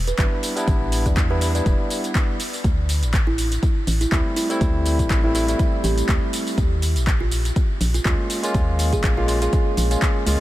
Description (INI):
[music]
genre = deep house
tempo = 122 BPM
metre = 4/4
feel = swing 56% on 16ths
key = unclear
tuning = A4 = 440 Hz
[part]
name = organ-like FM bass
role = bass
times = 0.0-10.4 s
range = E1 to E2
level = -22 LUFS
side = equal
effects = sidechain pumping
[part]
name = kalimba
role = melody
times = 0.1-9.8 s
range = E4 to D5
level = -28 LUFS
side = right 1 dB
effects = analog delay
[part]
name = deep house drum kit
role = drums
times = 0.1-10.4 s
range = handclaps, hi-hat, tambourine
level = -27 LUFS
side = equal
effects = overdrive, small room reverb
[part]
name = barky tine electric piano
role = stabs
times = 0.2-10.4 s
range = G3 to F4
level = -26 LUFS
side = equal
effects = vintage 12-bit sampler grit, sidechain pumping, low-pass filter, diffuse ambient delay
[part]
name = electronic kick drum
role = drums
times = 0.2-10.1 s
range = none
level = -20 LUFS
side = equal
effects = overdrive, small room reverb
[sound]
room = light reverb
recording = none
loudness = -18 LUFS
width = side -15 dB against mid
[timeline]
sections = 0.0-10.4 A section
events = none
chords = 0.0 A9sus4; 2.4 D9sus4; 6.6 Eb9sus4